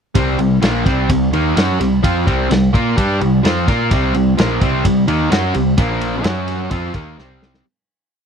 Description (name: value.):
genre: blues rock power trio and southern rock.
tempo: 128 BPM.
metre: 4/4.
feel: straight.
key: C minor.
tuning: A4 = 439 Hz.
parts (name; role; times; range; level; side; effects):
distorted electric guitar; riff; 0.1-7.6 s; Bb2 to Bb4; -16 LUFS; equal; distortion.
growling picked electric bass; bass; 0.2-7.6 s; Bb1 to Bb2; -20 LUFS; equal; overdrive.
vintage drum kit; drums; 0.2-7.6 s; kick drum, ride cymbal, snare drum; -19 LUFS; equal; none.
room: little or no reverb.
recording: dry, close 1970s-style studio recording.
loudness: -13 LUFS.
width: side -6 dB against mid.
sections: 0.2-7.6 riff.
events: fade-out 5.8-7.6; drum fill 7.2-7.6.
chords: 0.2 Cm; 5.8 Bb5; 6.3 F#5; 6.7 Cm.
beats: | 0.16 0.63 1.10 1.57 | 2.04 2.51 2.98 3.45 | 3.92 4.38 4.85 5.32 | 5.79 6.25 6.72 7.18.